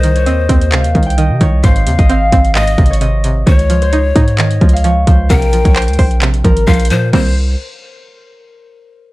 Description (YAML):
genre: hip hop, trap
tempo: 131 BPM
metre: 4/4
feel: half-time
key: C phrygian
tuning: A4 = 439 Hz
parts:
  - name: concert harp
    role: melody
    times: 0.0-7.3 s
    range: Bb4 to G5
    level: -19 LUFS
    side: left 1 dB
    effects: low-pass filter, tape echo
  - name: breathy bright large pan pipes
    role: second line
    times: 0.0-7.3 s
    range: C5 to G5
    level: -21 LUFS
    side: left 5 dB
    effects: tape echo
  - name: string-like resonator pluck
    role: accompaniment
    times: 0.0-7.3 s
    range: Ab2 to C5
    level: -18 LUFS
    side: right 3 dB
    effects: chorus, low-pass filter
  - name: hard-hitting 808-style bass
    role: bass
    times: 0.0-7.6 s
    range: Ab1 to C3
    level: -13 LUFS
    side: equal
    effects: none
  - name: trap drum kit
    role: drums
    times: 0.0-7.2 s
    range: crash cymbal, handclaps, hi-hat, kick drum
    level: -13 LUFS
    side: equal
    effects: vintage 12-bit sampler grit
room: little or no reverb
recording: dark, warm production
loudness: -9 LUFS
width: side -19 dB against mid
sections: 0.0-7.1 A section; 7.1-9.0 B section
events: none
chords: 0.0 Cm; 1.6 Ab; 3.5 Dbadd9; 5.3 Bbsus2; 7.1 Cm7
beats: 0.26 0.72 1.18 | 1.64 2.10 2.55 3.01 | 3.47 3.93 4.38 4.84 | 5.30 5.76 6.22 6.67 | 7.13